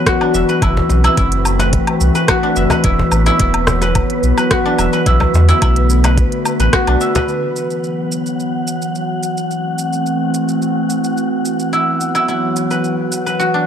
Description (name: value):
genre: organic downtempo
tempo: 108 BPM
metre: 4/4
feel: straight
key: unclear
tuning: A4 = 440 Hz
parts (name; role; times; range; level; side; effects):
- warbly tape-like pad; sustained chords; 0.0-13.7 s; D3 to F#4; -18 LUFS; left 1 dB; chorus, built-in reverb, sidechain pumping
- guzheng; arpeggios; 0.0-13.7 s; D4 to E5; -18 LUFS; equal; analog delay
- wind-like tuned noise texture; texture; 0.0-13.7 s; B4 to F#5; -25 LUFS; right 1 dB; built-in reverb
- electronic kick drum; drums; 0.1-6.8 s; none; -18 LUFS; equal; overdrive
- organic electronic drum kit; drums; 0.1-13.5 s; hi-hat, rim click, shaker, woodblock; -21 LUFS; left 1 dB; overdrive
- warm sub bass; bass; 0.3-7.0 s; E1 to E2; -14 LUFS; equal; sidechain pumping
- cajon; percussion; 0.8-7.3 s; none; -21 LUFS; left 2 dB; none
room: light reverb, digital ambience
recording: dry, gritty hardware recording, transformer saturation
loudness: -13 LUFS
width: side -9 dB against mid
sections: 0.0-7.3 A section; 7.3-13.7 B section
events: none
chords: 0.0 Esus2; 0.6 F#m7b5; 2.8 Esus2; 5.1 Bm7; 7.3 Esus2; 9.5 F#m7b5; 11.7 Esus2